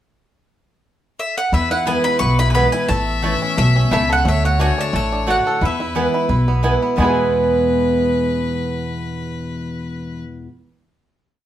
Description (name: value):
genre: bluegrass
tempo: 176 BPM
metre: 4/4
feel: swing 54% on 8ths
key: E mixolydian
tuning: A4 = 440 Hz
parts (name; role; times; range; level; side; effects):
- mandolin; melody; 1.2-6.6 s; E5 to C#6; -21 LUFS; equal; none
- clear fiddle; second line; 1.5-10.2 s; B4 to E5; -28 LUFS; left 6 dB; none
- picked steel-string acoustic guitar; accompaniment; 1.5-10.5 s; E2 to F#4; -22 LUFS; left 1 dB; none
- bluegrass banjo; arpeggios; 1.5-10.3 s; G#3 to A4; -24 LUFS; right 1 dB; none
- upright bass; bass; 1.5-10.2 s; A1 to E2; -20 LUFS; equal; none
- mandolin; stabs; 1.9-10.5 s; A3 to A5; -23 LUFS; right 3 dB; none
room: wet studio reverb, RT60 0.7 s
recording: heard from further back in the room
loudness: -15 LUFS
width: side -11 dB against mid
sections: 0.2-1.5 pickup bar; 1.5-7.0 A section; 7.0-9.7 final chord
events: none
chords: 0.2 N.C.; 1.5 E; 2.9 A; 4.2 D; 5.6 E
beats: | 0.16 0.50 0.84 1.18 | 1.52 1.86 2.21 2.55 | 2.89 3.23 3.57 3.91 | 4.25 4.59 4.93 5.27 | 5.62 5.96 6.30 6.64 | 6.98 7.32 7.67 8.01 | 8.35 8.69 9.04 9.38